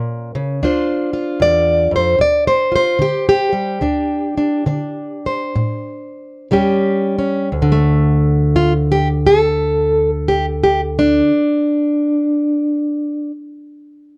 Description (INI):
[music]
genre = acoustic country blues, solo or duo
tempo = 58-78 BPM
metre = 4/4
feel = swing 66% on 8ths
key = D minor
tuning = A4 = 440 Hz
[part]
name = fingerpicked plugged-in old ladder-braced acoustic guitar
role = solo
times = 0.0-13.3 s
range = D2 to D5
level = -16 LUFS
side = equal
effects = none
[sound]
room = light reverb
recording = dark, warm production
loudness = -16 LUFS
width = mono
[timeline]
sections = 0.0-7.5 A section; 7.5-11.7 B section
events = slowing down 0.6-7.5; stop 3.8-6.5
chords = 0.0 N.C.; 0.6 Dm7; 2.2 G5; 3.8 D5; 6.5 Eb7; 7.5 D5